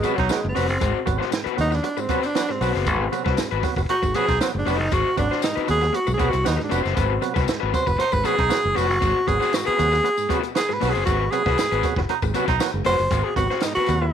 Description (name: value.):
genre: funk.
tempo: 117 BPM.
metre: 4/4.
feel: straight.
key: Ab mixolydian.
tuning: A4 = 440 Hz.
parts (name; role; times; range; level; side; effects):
warm tenor saxophone; melody; 0.0-14.1 s; Gb3 to C5; -23 LUFS; right 1 dB; none.
raw garage guitar; accompaniment; 0.0-14.1 s; C4 to C5; -26 LUFS; left 13 dB; overdrive, spring reverb.
overdriven tonewheel organ; stabs; 0.0-14.1 s; Ab2 to B3; -29 LUFS; right 11 dB; none.
modern bright fingered electric bass; bass; 0.0-14.1 s; F1 to Eb2; -24 LUFS; equal; transformer saturation.
compact cocktail drum kit; drums; 0.0-14.0 s; hi-hat, kick drum, snare drum; -28 LUFS; right 2 dB; none.
tambourine; percussion; 0.0-14.0 s; none; -38 LUFS; left 15 dB; none.
bright baritone saxophone; second line; 0.2-0.4, 3.9-4.5, 8.0-8.6, 12.1-12.6 s; Eb4; -29 LUFS; right 12 dB; none.
room: light reverb, small room ambience.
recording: 1960s-style stereo with parts hard left and right.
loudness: -19 LUFS.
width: side -8 dB against mid.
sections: 0.0-14.1 A section.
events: tenor saxophone solo 0.0-14.1.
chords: 0.0 Ab7#9.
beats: 0.30 | 0.82 1.33 1.84 2.36 | 2.87 3.38 3.90 4.41 | 4.92 5.43 5.94 6.46 | 6.97 7.48 7.99 8.51 | 9.02 9.53 10.04 10.55 | 11.06 11.57 12.09 12.60 | 13.11 13.62.